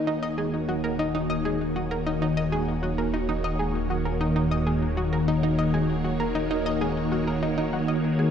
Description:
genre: ambient, sequencer-driven space music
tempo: 98 BPM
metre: 4/4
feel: straight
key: Eb minor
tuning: A4 = 441 Hz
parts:
  - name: phased string machine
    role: sustained chords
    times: 0.0-8.3 s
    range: Eb3 to Db5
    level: -25 LUFS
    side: left 1 dB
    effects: ensemble chorus, phaser
  - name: analog pluck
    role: riff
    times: 0.0-8.3 s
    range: Eb4 to Eb5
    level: -29 LUFS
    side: equal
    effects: chorus, ping-pong delay, shimmer reverb
  - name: fat analog bass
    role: bass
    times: 0.0-8.3 s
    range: Eb1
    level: -33 LUFS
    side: right 1 dB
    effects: none
  - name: bubbling stepped-filter texture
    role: texture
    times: 0.0-8.3 s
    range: Ab4 to Ab5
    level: -44 LUFS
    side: right 1 dB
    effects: none
room: wet concert hall reverb, RT60 2.0 s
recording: dark, warm production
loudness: -23 LUFS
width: side -8 dB against mid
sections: 0.0-8.3 A section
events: none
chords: 0.0 Ebm7

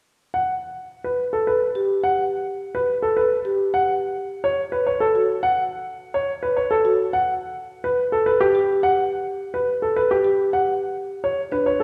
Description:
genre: classical, minimalist pattern music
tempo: 106 BPM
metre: 3/4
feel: straight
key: G lydian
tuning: A4 = 441 Hz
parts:
  - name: clear grand piano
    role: melody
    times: 0.3-11.8 s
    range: G4 to F#5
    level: -22 LUFS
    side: equal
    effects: none
  - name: marimba with medium mallets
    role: arpeggios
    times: 1.8-11.7 s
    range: D4 to G4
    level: -27 LUFS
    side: equal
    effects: none
room: wet scoring stage reverb, RT60 1.7 s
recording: heard from further back in the room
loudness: -22 LUFS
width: mono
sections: 0.3-11.8 A section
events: none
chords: 0.3 G; 3.7 F#5; 7.1 G; 10.5 Dmaj7(no3)

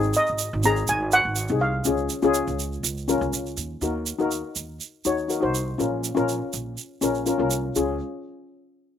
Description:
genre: calypso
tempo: 122 BPM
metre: 4/4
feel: straight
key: Db major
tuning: A4 = 440 Hz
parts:
  - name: steel pan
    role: accompaniment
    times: 0.0-8.0 s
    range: C4 to Db5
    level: -24 LUFS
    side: left 4 dB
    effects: none
  - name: upright bass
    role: bass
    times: 0.0-8.0 s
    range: Ab1 to Eb2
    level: -29 LUFS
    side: right 2 dB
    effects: none
  - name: egg shaker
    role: percussion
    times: 0.0-8.0 s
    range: none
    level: -30 LUFS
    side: right 8 dB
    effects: none
  - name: steel pan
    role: melody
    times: 0.2-3.5 s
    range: Eb5 to Bb5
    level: -22 LUFS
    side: right 1 dB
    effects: none
room: little or no reverb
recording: recorded outdoors, with no room sound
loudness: -22 LUFS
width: side -9 dB against mid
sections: 0.0-3.8 A section; 3.8-7.8 B section; 7.8-9.0 C section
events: none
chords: 0.0 Ab; 1.9 Db; 3.8 Ebm; 5.8 Bbm; 7.8 Db

